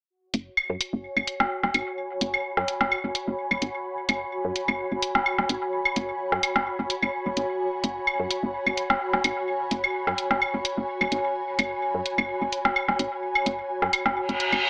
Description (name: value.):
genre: minimal techno.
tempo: 128 BPM.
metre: 4/4.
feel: swing 53% on 16ths.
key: unclear.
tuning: A4 = 440 Hz.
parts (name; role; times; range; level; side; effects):
ethereal airy pad; texture; 0.8-14.7 s; F#4 to B5; -31 LUFS; equal; ensemble chorus, built-in reverb.
woody FM bass; bass; 0.3-14.6 s; E1 to F#2; -32 LUFS; equal; none.
electronic hi-hat; drums; 0.3-14.6 s; none; -31 LUFS; equal; none.
claves and woodblock; percussion; 0.6-14.6 s; none; -28 LUFS; equal; tape echo.
reverse cymbal; sound effects; 14.3-14.7 s; none; -26 LUFS; equal; none.
room: light reverb.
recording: dry, gritty hardware recording, AM radio sound.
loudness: -26 LUFS.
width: mono.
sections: 0.1-14.7 A section.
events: reverse cymbal 14.3-14.7.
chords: 0.1 F#sus4.